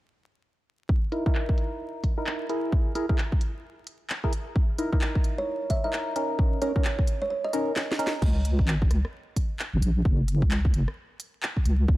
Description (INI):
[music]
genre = UK garage, two-step garage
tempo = 131 BPM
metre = 4/4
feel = swing 62% on 16ths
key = C# dorian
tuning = A4 = 440 Hz
[part]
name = electronic kick drum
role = drums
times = 0.9-12.0 s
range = none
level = -24 LUFS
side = equal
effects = studio reverb
[part]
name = percussive organ stab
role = stabs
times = 1.1-8.1 s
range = C#4 to A#4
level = -31 LUFS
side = equal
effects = chorus, phaser, tape echo
[part]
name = house drum kit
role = drums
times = 1.1-11.8 s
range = crash cymbal, handclaps, hi-hat, rim click, snare drum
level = -33 LUFS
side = equal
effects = low-pass filter on hats, studio reverb, low-pass filter on snare, low-pass filter on cymbals
[part]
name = kalimba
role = melody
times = 5.4-7.9 s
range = C#5 to E5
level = -31 LUFS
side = right 2 dB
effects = vintage 12-bit sampler grit, tape echo
[part]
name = deep soft wobble bass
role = bass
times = 8.2-12.0 s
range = F#1 to C#2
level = -23 LUFS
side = equal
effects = chorus
[sound]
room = little or no reverb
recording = dark, warm production, vinyl crackle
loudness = -24 LUFS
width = side -17 dB against mid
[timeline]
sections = 0.9-8.2 A section; 8.2-12.0 B section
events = filter sweep on synth stab 0.9-8.2; kick drops out 7.8-8.2; drum fill 7.8-8.2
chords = 0.9 Emaj7#11/D#; 2.7 E; 4.6 C#m69; 6.4 A#madd11/C#; 8.2 C#5; 10.1 F#5